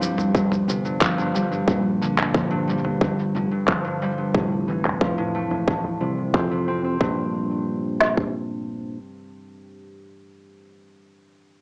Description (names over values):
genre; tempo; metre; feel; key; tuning
folktronica; 90 BPM; 4/4; straight; unclear; A4 = 441 Hz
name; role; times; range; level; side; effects
concert harp; arpeggios; 0.0-10.9 s; G2 to C4; -24 LUFS; equal; low-pass filter, cassette tape, tape echo
fingered electric bass; bass; 0.0-9.0 s; F1 to F2; -26 LUFS; equal; none
lo-fi sampler-style drum kit; drums; 0.0-7.0 s; handclaps, shaker, toms; -27 LUFS; equal; low-pass filter on perc, cassette tape, low-pass filter on hats, low-pass filter on snare, low-pass filter on toms
organic electronic drum kit; drums; 0.3-8.3 s; kick drum, snare drum; -22 LUFS; equal; overdrive, cassette tape
room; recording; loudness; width
light reverb, digital ambience; home recording on cassette, small speaker sound; -20 LUFS; side -32 dB against mid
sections
0.0-7.0 A section; 7.0-9.7 B section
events
filter sweep on drum 0.0-7.0; filter sweep on fingered electric bass 0.0-7.0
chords
0.0 Csus4; 1.7 Bb6; 4.3 Fmaj7; 7.0 Gm/Bb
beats
0.34 1.01 | 1.68 2.34 3.01 3.68 | 4.34 5.01 5.68 6.34 | 7.01 7.68 8.34 9.01